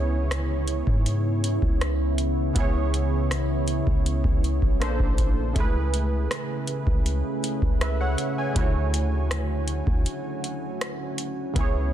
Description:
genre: contemporary R&B.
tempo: 80 BPM.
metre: 4/4.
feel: straight.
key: unclear.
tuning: A4 = 436 Hz.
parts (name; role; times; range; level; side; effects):
warm analog keys; accompaniment; 0.0-11.9 s; Bb2 to G#5; -30 LUFS; right 3 dB; chorus.
deep dark ambient pad; sustained chords; 0.0-11.9 s; C#3 to G#4; -30 LUFS; equal; chorus, built-in reverb.
soft 808-style bass; bass; 0.0-11.9 s; Bb1 to G#2; -25 LUFS; equal; none.
booming analog drum machine; drums; 0.3-11.7 s; hi-hat, kick drum, rim click; -26 LUFS; equal; vintage 12-bit sampler grit.
room: little or no reverb.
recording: dense, heavily limited modern master.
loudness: -22 LUFS.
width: side -11 dB against mid.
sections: 0.0-11.9 A section.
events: break 10.1-11.6.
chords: 0.0 C#m7; 4.8 Bbmaj7; 5.6 Amaj7/C#; 8.6 Dmaj7.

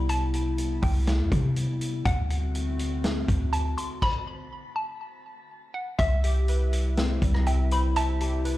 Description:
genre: hip hop, atmospheric cloud-rap.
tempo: 122 BPM.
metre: 4/4.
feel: half-time.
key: C lydian.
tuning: A4 = 437 Hz.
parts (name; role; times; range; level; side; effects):
hollow square pluck; melody; 0.0-8.6 s; E5 to C6; -32 LUFS; left 1 dB; chorus, low-pass filter, ping-pong delay.
warbly tape-like pad; sustained chords; 0.0-8.6 s; C3 to F#4; -33 LUFS; left 1 dB; chorus, built-in reverb, sidechain pumping.
clean 808-style bass; bass; 0.0-8.6 s; C2 to C3; -25 LUFS; equal; none.
vintage drum kit; drums; 0.1-8.6 s; crash cymbal, hi-hat, kick drum, rim click, snare drum; -31 LUFS; equal; none.
warbly lo-fi synth keys; arpeggios; 6.0-8.6 s; G3 to E5; -33 LUFS; equal; chorus, low-pass filter, ping-pong delay.
room: little or no reverb.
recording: played on a big sound system in a bare room, large studio reverb.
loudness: -24 LUFS.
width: side -16 dB against mid.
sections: 0.0-6.0 A section; 6.0-8.6 B section.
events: stop 4.0-6.0.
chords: 0.0 Cmaj7; 2.1 D7; 6.0 Cmaj7.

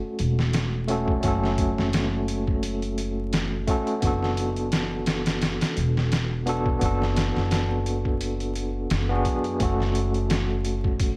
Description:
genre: trip hop.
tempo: 86 BPM.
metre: 4/4.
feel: swing 56% on 16ths.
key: F# minor.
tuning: A4 = 436 Hz.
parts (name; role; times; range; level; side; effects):
overdriven tine electric piano; accompaniment; 0.0-11.2 s; A3 to A4; -29 LUFS; equal; tremolo, tape echo.
upright bass; bass; 0.2-11.2 s; E1 to F#2; -29 LUFS; equal; none.
trip hop sampler-style drum kit; drums; 0.2-11.2 s; hi-hat, kick drum, snare drum; -30 LUFS; equal; studio reverb.
room: light reverb.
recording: vinyl crackle.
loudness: -25 LUFS.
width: mono.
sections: 0.0-11.2 A section.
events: none.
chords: 0.0 F#m; 4.0 E7sus4; 9.6 F#m.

